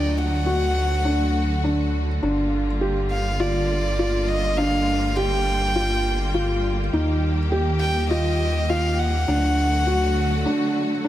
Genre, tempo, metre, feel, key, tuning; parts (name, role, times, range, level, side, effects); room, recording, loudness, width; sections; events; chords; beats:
piano and strings electronica; 102 BPM; 4/4; straight; G minor; A4 = 440 Hz
warm violin; melody; 0.0-11.0 s; D5 to G5; -26 LUFS; equal; tape echo
rich studio string section; sustained chords; 0.0-11.1 s; D3 to G4; -29 LUFS; right 1 dB
felt-muted upright piano; riff; 0.0-11.1 s; D4 to G4; -24 LUFS; equal; tape echo
dark detuned saw bass; bass; 0.0-10.5 s; G1 to Eb2; -23 LUFS; equal
light reverb, small room ambience; -19 LUFS; side -13 dB against mid
0.0-11.1 A section
break 10.5-11.1
0.0 D; 2.2 Gm7; 6.9 Eb; 9.3 D
0.46 1.05 1.64 | 2.22 2.81 3.40 3.99 | 4.58 5.16 5.75 6.34 | 6.93 7.52 8.11 8.69 | 9.28 9.87 10.46 11.05